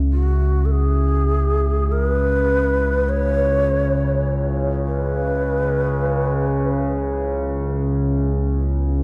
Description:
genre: dark ambient drone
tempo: free time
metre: none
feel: none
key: C# minor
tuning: A4 = 438 Hz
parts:
  - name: deep dark ambient pad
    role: sustained chords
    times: 0.0-9.0 s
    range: C#4 to E5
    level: -36 LUFS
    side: equal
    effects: none
  - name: analog drone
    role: drone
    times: 0.0-9.0 s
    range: C#2 to C#3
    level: -21 LUFS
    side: equal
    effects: chorus
  - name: breathy mellow long shakuhachi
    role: melody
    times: 0.1-7.2 s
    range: F#4 to C#5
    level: -25 LUFS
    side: equal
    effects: delay
room: wet cathedral reverb, RT60 5.7 s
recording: in a vast, echoing space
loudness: -20 LUFS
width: mono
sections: 0.0-9.0 A section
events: none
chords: 0.0 C#m

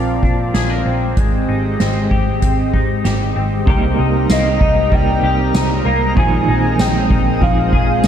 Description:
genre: dream pop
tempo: 96 BPM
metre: 4/4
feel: straight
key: unclear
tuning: A4 = 440 Hz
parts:
  - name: lush unison pad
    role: sustained chords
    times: 0.0-8.1 s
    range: Ab3 to Eb5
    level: -21 LUFS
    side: right 1 dB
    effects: chorus
  - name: semi-hollow electric guitar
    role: arpeggios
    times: 0.0-8.1 s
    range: Bb2 to Bb4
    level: -22 LUFS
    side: left 5 dB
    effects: analog chorus, ping-pong delay
  - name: vintage muted picked electric bass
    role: bass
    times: 0.0-8.1 s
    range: Ab1 to Bb2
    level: -19 LUFS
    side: equal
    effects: none
  - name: soft-mallet drum kit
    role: drums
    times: 0.2-8.1 s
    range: hi-hat, kick drum, ride cymbal, snare drum, tambourine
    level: -18 LUFS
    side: equal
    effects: none
  - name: semi-hollow electric guitar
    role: accompaniment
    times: 3.7-8.1 s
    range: Bb2 to Bb4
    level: -21 LUFS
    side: right 5 dB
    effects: tremolo, analog chorus
  - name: warm velvety synth lead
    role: melody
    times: 4.3-8.1 s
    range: Eb5 to Bb5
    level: -19 LUFS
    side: equal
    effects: chorus, ping-pong delay
room: light reverb, small room ambience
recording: dark, warm production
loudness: -13 LUFS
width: side -9 dB against mid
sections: 0.0-3.7 A section; 3.7-8.1 B section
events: none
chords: 0.0 Bbadd9; 1.2 Abmaj7; 3.7 Cm7; 6.2 Bb9sus4

